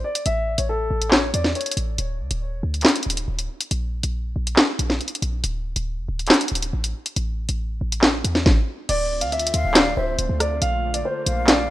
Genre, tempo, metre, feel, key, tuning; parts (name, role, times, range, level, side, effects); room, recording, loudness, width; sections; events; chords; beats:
hip hop, drill; 139 BPM; 4/4; half-time; D minor; A4 = 440 Hz
dark baby grand piano; melody; 0.0-1.7, 8.9-11.6 s; A4 to F5; -25 LUFS; equal; low-pass filter, tape echo
short 808-style bass; bass; 0.0-11.7 s; D1 to E2; -25 LUFS; equal
drill drum kit; drums; 0.2-11.6 s; crash cymbal, handclaps, hi-hat, kick drum, rim click, snare drum; -18 LUFS; equal
warm analog pad; sustained chords; 9.0-11.7 s; D3 to F4; -33 LUFS; right 1 dB; chorus
breathy hollow jazz flute; second line; 9.5-11.7 s; E5 to F5; -28 LUFS; left 2 dB
digital ambience; rough home demo mix; -19 LUFS; side -15 dB against mid
0.0-8.9 A section; 8.9-11.7 B section
0.3 A5; 2.0 N.C.; 5.4 D5; 7.2 A5; 8.9 Dm7; 10.6 Bbmaj7
| 0.26 0.69 1.12 1.55 | 1.98 2.42 2.85 3.28 | 3.71 4.14 4.57 5.01 | 5.44 5.87 6.30 6.73 | 7.16 7.60 8.03 8.46 | 8.89 9.32 9.75 10.19 | 10.62 11.05 11.48